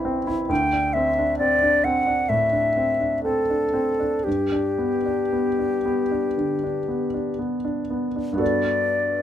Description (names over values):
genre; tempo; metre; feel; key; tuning
classical, impressionist duo for flute and grand piano; 56-68 BPM; 4/4; rubato; G major; A4 = 440 Hz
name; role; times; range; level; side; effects
clear grand piano; accompaniment; 0.0-9.2 s; A1 to A4; -24 LUFS; right 1 dB; none
concert flute; melody; 0.5-9.2 s; G4 to G5; -21 LUFS; left 2 dB; none
room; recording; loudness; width
light reverb; close, detailed microphones; -20 LUFS; side -10 dB against mid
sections
0.0-8.4 A section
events
none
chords
0.5 Dsus2; 4.3 G; 8.4 Gmaj9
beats
| 0.50 1.39 2.29 3.24 | 4.26 5.33 6.37 7.40 | 8.40